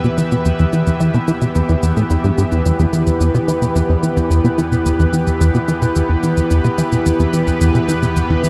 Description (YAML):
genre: ambient, sequencer-driven space music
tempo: 109 BPM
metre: 4/4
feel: straight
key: E minor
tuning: A4 = 440 Hz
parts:
  - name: lush unison pad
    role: sustained chords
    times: 0.0-8.5 s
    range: E2 to E5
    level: -23 LUFS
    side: equal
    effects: chorus
  - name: plucky analog bass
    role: riff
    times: 0.0-8.5 s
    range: E2 to E3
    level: -17 LUFS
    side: equal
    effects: subtle chorus, tape echo
  - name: shaker and percussion blips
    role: percussion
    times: 0.0-8.5 s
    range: none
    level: -34 LUFS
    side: equal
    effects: tape echo
  - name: bubbling stepped-filter texture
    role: texture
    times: 0.0-8.5 s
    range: B4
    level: -29 LUFS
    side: equal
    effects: chorus, built-in reverb
  - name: vibraphone with soft mallets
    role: arpeggios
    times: 2.7-8.5 s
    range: E4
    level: -24 LUFS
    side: equal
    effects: tape echo
room: moderate huge ambient reverb, RT60 8.4 s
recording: cassette tape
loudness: -16 LUFS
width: mono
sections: 0.0-8.5 A section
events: filter sweep on analog synth bass 0.0-8.5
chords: 0.0 Em